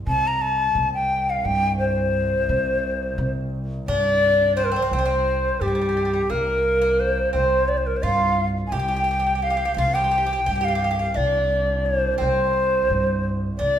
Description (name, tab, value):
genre	Turkish makam ensemble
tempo	173 BPM (eighths)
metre	7/8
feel	straight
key	C makam hicaz, C makam ussak from 4.9 s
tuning	A4 = 441 Hz
part	rich double bass	drone	0.0-13.8 s	C2	-30 LUFS	right 1 dB	none
part	breathy bright ney	melody	0.1-13.8 s	G4 to Bb5	-21 LUFS	left 1 dB	none
part	upright bass	bass	0.1-13.8 s	C2 to C3	-27 LUFS	right 1 dB	none
part	Greek bouzouki	second line	3.9-13.8 s	G3 to G4	-28 LUFS	right 2 dB	none
room	wet recital hall reverb, RT60 1.2 s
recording	minimal, uncompressed stereo recording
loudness	-19 LUFS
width	side -10 dB against mid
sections	0.0-4.9 A section; 4.9-13.8 B section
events	none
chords	none